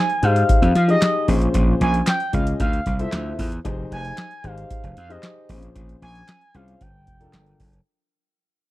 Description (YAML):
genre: early-eighties boogie funk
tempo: 114 BPM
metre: 4/4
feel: straight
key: unclear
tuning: A4 = 438 Hz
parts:
  - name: expressive synth lead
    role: melody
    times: 0.0-7.6 s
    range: Eb5 to Ab5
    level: -24 LUFS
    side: equal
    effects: chorus, slapback echo
  - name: booming analog drum machine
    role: drums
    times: 0.1-7.9 s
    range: handclaps, hi-hat, kick drum, snare drum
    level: -22 LUFS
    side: equal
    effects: none
  - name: warm grand piano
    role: accompaniment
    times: 0.2-7.7 s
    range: C4 to Eb5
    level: -27 LUFS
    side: left 4 dB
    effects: none
  - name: gritty slap bass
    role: bass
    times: 0.2-7.8 s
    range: F1 to F3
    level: -21 LUFS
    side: equal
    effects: overdrive
room: digital ambience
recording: dry, close 1970s-style studio recording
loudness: -17 LUFS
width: side -16 dB against mid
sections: 0.0-7.9 A section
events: fade-out 0.0-7.9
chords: 0.0 Fm9; 1.3 Bbm9; 2.6 Dm9; 3.6 Fm9; 5.5 Bbm9; 6.8 Gm9